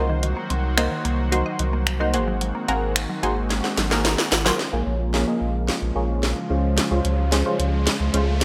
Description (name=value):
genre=dance-pop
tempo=110 BPM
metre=4/4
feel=straight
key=Bb minor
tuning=A4 = 441 Hz
part: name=punchy chord stab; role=accompaniment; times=0.0-8.4 s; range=Ab3 to Eb5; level=-28 LUFS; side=equal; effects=chorus, phaser, low-pass filter
part: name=lush unison pad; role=sustained chords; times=0.0-8.4 s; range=Db3 to C5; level=-31 LUFS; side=equal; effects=chorus, low-pass filter
part: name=mallet-like synth pluck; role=arpeggios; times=0.0-4.5 s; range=Eb3 to Gb5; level=-35 LUFS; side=equal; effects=chorus, digital delay
part: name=warm sub bass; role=bass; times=0.0-8.4 s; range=Ab1 to Db2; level=-26 LUFS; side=equal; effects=none
part: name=house drum kit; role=drums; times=0.2-8.4 s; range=finger snaps, hi-hat, snare drum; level=-27 LUFS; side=equal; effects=gated reverb
part: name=riser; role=sound effects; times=5.6-8.4 s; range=none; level=-36 LUFS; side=equal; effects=none
room=light reverb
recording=bright 1980s-style digital production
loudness=-22 LUFS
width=mono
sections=0.0-4.6 A section; 4.6-8.4 B section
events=drum fill 3.5-4.6, 4.6-8.4; build-up 4.6-8.4; filter sweep 4.6-8.4; riser 5.6-8.4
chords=0.0 Cm7b5; 2.1 Ab9; 4.6 Bbm7; 6.5 Dbmaj7